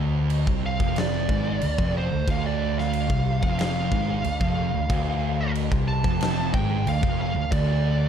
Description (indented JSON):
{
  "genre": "stoner and doom metal",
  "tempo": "92 BPM",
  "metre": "4/4",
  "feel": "straight",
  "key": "unclear",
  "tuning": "A4 = 440 Hz",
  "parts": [
    { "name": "thick fuzz guitar", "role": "riff", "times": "0.0-8.1 s", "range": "D2 to C3", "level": "-29 LUFS", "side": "left 10 dB", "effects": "distortion" },
    { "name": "thick fuzz guitar", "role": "riff", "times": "0.0-8.1 s", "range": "D2 to C3", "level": "-28 LUFS", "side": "right 8 dB", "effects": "distortion" },
    { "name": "tine electric piano", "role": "bass", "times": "0.0-8.1 s", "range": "F1 to D2", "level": "-28 LUFS", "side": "equal", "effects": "overdrive" },
    { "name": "big rock drum kit", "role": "drums", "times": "0.3-7.7 s", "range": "crash cymbal, kick drum, snare drum", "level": "-28 LUFS", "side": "equal", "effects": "none" },
    { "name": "fuzz lead guitar", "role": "melody", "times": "0.7-8.1 s", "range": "C5 to A5", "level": "-29 LUFS", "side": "right 3 dB", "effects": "distortion" }
  ],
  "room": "light reverb, studio ambience",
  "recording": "dark, warm production",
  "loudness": "-22 LUFS",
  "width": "side -8 dB against mid",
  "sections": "0.0-8.1 A section",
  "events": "lead electric guitar solo 0.0-8.1",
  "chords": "0.0 Dm",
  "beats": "0.31 0.96 1.62 | 2.27 2.93 3.58 4.24 | 4.89 5.55 6.21 6.86 | 7.52"
}